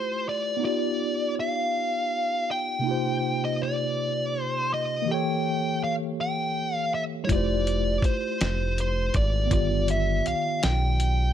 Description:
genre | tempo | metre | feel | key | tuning
slow six-eight R&B | 54 BPM (dotted quarters) | 6/8 | straight | F major | A4 = 435 Hz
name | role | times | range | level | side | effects
fuzz lead guitar | melody | 0.0-11.3 s | C5 to G5 | -27 LUFS | equal | distortion, slapback echo
mellow tine electric piano | accompaniment | 0.0-11.3 s | C3 to D5 | -29 LUFS | equal | medium stereo tremolo
round analog bass | bass | 7.3-11.3 s | F1 to B1 | -26 LUFS | equal | none
dusty soul sampler-style drum kit | drums | 7.3-11.2 s | hi-hat, kick drum, snare drum | -26 LUFS | equal | none
room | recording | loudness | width
little or no reverb | none | -24 LUFS | side -10 dB against mid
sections
0.0-11.3 A section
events
none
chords
0.0 Fmaj7; 0.6 G7b13; 2.8 Cm11; 5.1 A7b9; 7.3 Fmaj7; 9.5 G7b13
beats
| 0.63 1.74 | 2.85 3.96 | 5.07 6.18 | 7.29 8.40 | 9.52 10.63

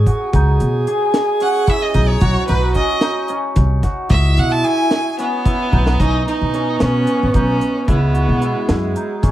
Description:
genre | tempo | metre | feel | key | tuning
progressive instrumental, band music in an uneven meter | 222 BPM (eighths) | 7/8 | straight | B major | A4 = 441 Hz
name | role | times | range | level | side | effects
warm alto saxophone | second line | 0.0-9.3 s | G#3 to G#4 | -21 LUFS | right 3 dB | none
cimbalom | arpeggios | 0.0-9.3 s | C#4 to D#5 | -23 LUFS | left 4 dB | none
upright bass | bass | 0.0-9.3 s | G#1 to B2 | -16 LUFS | equal | none
deep reggae drum kit | drums | 0.1-9.3 s | hi-hat, kick drum, snare drum | -18 LUFS | equal | none
rich violin | melody | 1.4-8.9 s | B3 to A5 | -20 LUFS | right 2 dB | plate reverb
room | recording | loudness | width
light reverb | none | -14 LUFS | side -13 dB against mid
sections
0.0-6.0 A section; 6.0-9.3 B section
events
violin solo 0.0-6.0; drum fill 5.7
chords
0.3 C#m9; 2.2 Badd9; 4.1 C#m9; 6.0 Badd9; 7.9 C#m9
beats
0.06 | 0.33 0.60 0.87 1.14 1.41 1.68 1.95 | 2.22 2.49 2.76 3.03 3.30 3.57 3.84 | 4.11 4.38 4.65 4.92 5.19 5.46 5.73 | 6.00 6.27 6.54 6.80 7.08 7.34 7.62 | 7.88 8.15 8.42 8.69 8.96 9.23

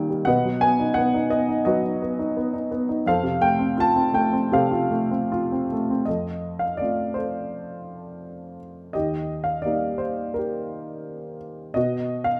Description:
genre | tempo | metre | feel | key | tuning
classical, lyrical solo piano | 75-90 BPM | 4/4 | rubato | unclear | A4 = 441 Hz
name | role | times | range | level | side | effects
dark grand piano | solo | 0.0-12.4 s | Eb2 to A5 | -24 LUFS | equal | none
room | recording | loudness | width
moderate recital hall reverb, RT60 1.4 s | none | -24 LUFS | mono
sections
0.0-6.1 A section; 6.1-12.4 B section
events
none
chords
0.3 B; 3.1 F; 8.9 Eb; 11.8 B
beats
| 0.27 0.96 1.66 2.36 | 3.06 3.77 4.51 5.29 | 6.06 6.79 7.52 8.24 | 8.94 9.65 10.36 11.07 | 11.76

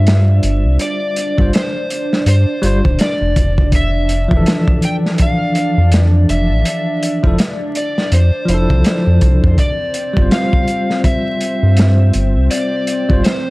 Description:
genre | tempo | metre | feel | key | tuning
trip hop | 82 BPM | 4/4 | swing 60% on 16ths | unclear | A4 = 440 Hz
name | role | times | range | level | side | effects
overdriven slide guitar | melody | 0.0-13.5 s | C5 to G5 | -22 LUFS | left 1 dB | dub echo
bell-like tine electric piano | accompaniment | 0.0-13.2 s | E3 to C5 | -20 LUFS | equal | tremolo
dark analog pad | sustained chords | 0.0-13.5 s | C4 to D5 | -22 LUFS | right 1 dB | chorus, vintage 12-bit sampler grit
round analog bass | bass | 0.0-13.2 s | D1 to G2 | -12 LUFS | equal | none
crunchy breakbeat drum kit | drums | 0.1-13.5 s | hi-hat, kick drum, snare drum | -16 LUFS | equal | none
room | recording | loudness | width
small room ambience | dark, warm production, vinyl crackle | -12 LUFS | side -21 dB against mid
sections
0.0-13.5 A section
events
none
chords
0.0 G7sus4; 3.7 Fmaj7; 9.6 G7sus4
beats
0.07 | 0.80 1.53 2.27 3.00 | 3.73 4.46 5.19 5.92 | 6.66 7.39 8.12 8.85 | 9.58 10.31 11.05 11.78 | 12.51 13.24

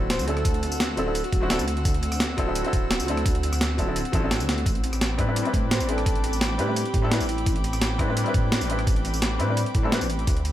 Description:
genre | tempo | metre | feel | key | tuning
liquid drum and bass | 171 BPM | 4/4 | straight | A dorian | A4 = 437 Hz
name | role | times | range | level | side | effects
felt-muted upright piano | accompaniment | 0.0-10.1 s | F#3 to B4 | -29 LUFS | left 2 dB | ping-pong delay
airy breathy pad | sustained chords | 0.0-10.5 s | C4 to E6 | -32 LUFS | equal | chorus, sidechain pumping
dark detuned saw bass | bass | 0.0-10.5 s | D1 to A2 | -27 LUFS | equal | none
breathy flute-like synth lead | melody | 0.1-1.4, 5.7-7.6 s | E4 to C5 | -32 LUFS | right 1 dB | chorus, ping-pong delay
breakbeat sampler-style drum kit | drums | 0.1-10.5 s | hi-hat, rim click, snare drum, tambourine | -28 LUFS | right 1 dB | studio reverb
electronic kick drum | drums | 0.4-10.3 s | none | -25 LUFS | equal | studio reverb
room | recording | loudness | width
digital ambience | none | -21 LUFS | side -12 dB against mid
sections
0.0-10.5 A section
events
kick drops out 4.3-4.7; drum fill 4.5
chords
0.0 D9; 4.7 Am11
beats
0.10 | 0.45 0.80 1.15 1.50 | 1.85 2.20 2.55 2.90 | 3.26 3.61 3.96 4.31 | 4.66 5.01 5.36 5.71 | 6.06 6.41 6.76 7.12 | 7.47 7.82 8.17 8.52 | 8.87 9.22 9.57 9.92 | 10.27

